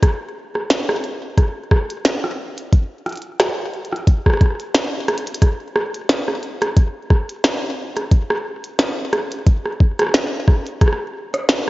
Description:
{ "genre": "IDM", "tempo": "89 BPM", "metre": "4/4", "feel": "swing 56% on 16ths", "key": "none", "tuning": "none", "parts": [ { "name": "electronic kick drum", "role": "drums", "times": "0.0-11.0 s", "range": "none", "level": "-13 LUFS", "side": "equal", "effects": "overdrive" }, { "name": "glitchy drum kit", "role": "drums", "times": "0.0-11.7 s", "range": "hi-hat, rim click, snare drum", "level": "-19 LUFS", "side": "equal", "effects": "none" } ], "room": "moderate lush hall reverb, RT60 2.3 s", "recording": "worn, warbling old tape, cassette tape, warbly pitch drift, nothing above 7.5 kHz", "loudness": "-17 LUFS", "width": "side -19 dB against mid", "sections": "0.0-11.7 A section", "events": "break 4.7-5.4; drum fill 5.1-5.4", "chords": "none", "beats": "| 0.03 0.70 1.38 2.05 | 2.72 3.40 4.07 4.75 | 5.42 6.09 6.77 7.44 | 8.12 8.79 9.46 10.14 | 10.81 11.49" }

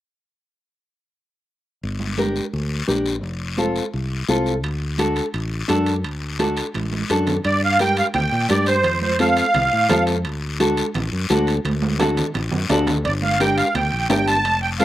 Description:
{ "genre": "latin, cumbia", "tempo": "171 BPM", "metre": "4/4", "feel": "straight", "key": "unclear", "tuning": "A4 = 440 Hz", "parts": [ { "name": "fingered electric bass", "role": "bass", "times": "1.8-14.8 s", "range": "F1 to Bb2", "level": "-24 LUFS", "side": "equal", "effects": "none" }, { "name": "guiro", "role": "percussion", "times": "1.8-14.8 s", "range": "none", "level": "-30 LUFS", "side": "left 6 dB", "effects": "none" }, { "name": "congas", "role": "percussion", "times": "2.0-14.8 s", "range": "none", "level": "-28 LUFS", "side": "right 4 dB", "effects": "none" }, { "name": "nylon-string guitar", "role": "accompaniment", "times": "2.2-14.8 s", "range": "C4 to Bb4", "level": "-21 LUFS", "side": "left 1 dB", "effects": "none" }, { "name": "timbales", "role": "percussion", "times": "4.6-14.8 s", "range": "none", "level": "-30 LUFS", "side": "right 4 dB", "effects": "slapback echo" }, { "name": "musette accordion", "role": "melody", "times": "7.5-10.0, 13.1-14.8 s", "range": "C5 to A5", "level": "-18 LUFS", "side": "right 2 dB", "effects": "slapback echo" } ], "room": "light reverb", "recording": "recorded outdoors, with no room sound", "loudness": "-18 LUFS", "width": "side -13 dB against mid", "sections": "1.8-7.4 A section; 7.4-14.8 B section", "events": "drum fill 6.7-7.4, 11.6-13.0", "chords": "1.8 Gm; 3.2 F; 4.6 D; 7.4 Gm; 8.8 F; 10.2 D; 13.0 Gm", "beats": "| 1.83 2.18 2.54 2.88 | 3.24 3.59 3.94 4.29 | 4.64 4.99 5.34 5.69 | 6.04 6.39 6.74 7.09 | 7.44 7.79 8.14 8.49 | 8.85 9.20 9.54 9.89 | 10.25 10.60 10.95 11.30 | 11.65 12.00 12.35 12.70 | 13.05 13.40 13.75 14.10 | 14.45 14.80" }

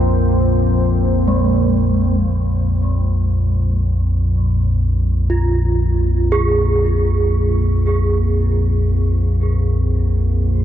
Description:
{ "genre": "dark ambient drone", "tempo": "free time", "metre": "none", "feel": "none", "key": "unclear", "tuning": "A4 = 440 Hz", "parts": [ { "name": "deep dark ambient pad", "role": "sustained chords", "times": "0.0-10.6 s", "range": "Bb3 to C5", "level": "-24 LUFS", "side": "right 2 dB", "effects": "chorus, built-in reverb" }, { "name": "deep rumbling drone", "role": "drone", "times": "0.0-10.6 s", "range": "Bb1 to F2", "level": "-15 LUFS", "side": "equal", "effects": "built-in reverb" }, { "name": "gamelan-type bronze metallophone", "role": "arpeggios", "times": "1.3-10.6 s", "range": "Ab3 to Ab4", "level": "-23 LUFS", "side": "right 2 dB", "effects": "diffuse ambient delay" } ], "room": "light reverb", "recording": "dark, warm production, nothing above 7.5 kHz", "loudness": "-14 LUFS", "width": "side -11 dB against mid", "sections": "0.0-2.2 A section; 2.2-10.6 B section", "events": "fade-in on ambient pad 2.2-10.6", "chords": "0.0 Bbsus2", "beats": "free time" }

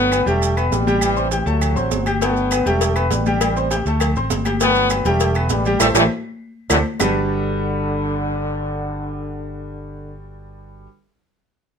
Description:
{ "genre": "latin, salsa", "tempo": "200 BPM", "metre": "4/4", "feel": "straight", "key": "G major", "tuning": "A4 = 444 Hz", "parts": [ { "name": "clear trombone section", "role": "melody", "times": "0.0-10.2 s", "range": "A2 to B3", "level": "-22 LUFS", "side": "left 1 dB", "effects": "none" }, { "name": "clear baby grand piano", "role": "accompaniment", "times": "0.0-10.9 s", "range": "G3 to G6", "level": "-22 LUFS", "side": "left 1 dB", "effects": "none" }, { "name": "fingered electric bass", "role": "bass", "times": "0.0-10.9 s", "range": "E1 to D2", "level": "-23 LUFS", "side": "equal", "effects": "none" }, { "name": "claves", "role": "percussion", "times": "0.1-7.1 s", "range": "none", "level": "-31 LUFS", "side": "left 4 dB", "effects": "none" }, { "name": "congas", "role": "percussion", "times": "0.1-7.1 s", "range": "none", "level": "-28 LUFS", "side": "left 4 dB", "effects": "none" }, { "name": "maracas", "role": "percussion", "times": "0.1-7.1 s", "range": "none", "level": "-28 LUFS", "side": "right 7 dB", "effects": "none" }, { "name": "timbales and agogo bells", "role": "percussion", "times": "0.1-7.1 s", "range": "none", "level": "-27 LUFS", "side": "right 8 dB", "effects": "none" }, { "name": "cowbell and bongos", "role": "percussion", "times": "2.2-7.1 s", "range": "none", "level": "-26 LUFS", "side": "left 8 dB", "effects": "none" } ], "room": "light reverb", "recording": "minimal, uncompressed stereo recording", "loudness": "-16 LUFS", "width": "side -7 dB against mid", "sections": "0.0-7.0 A section; 7.0-9.4 B section", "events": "band accent 5.8-7.0; drum fill 6.4-7.0", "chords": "0.4 Em7; 1.0 Am7; 1.6 D7; 2.2 Gmaj9; 3.4 Am7; 4.0 D5; 4.6 Gmaj9; 5.8 Am; 6.4 D7(no3); 7.0 Gmaj9", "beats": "0.12 0.42 0.72 | 1.02 1.32 1.62 1.92 | 2.21 2.51 2.81 3.11 | 3.41 3.71 4.01 4.31 | 4.61 4.91 5.21 5.51 | 5.81 6.11 6.41 6.71 | 7.01 7.31 7.61 7.91 | 8.21 8.51 8.81 9.11" }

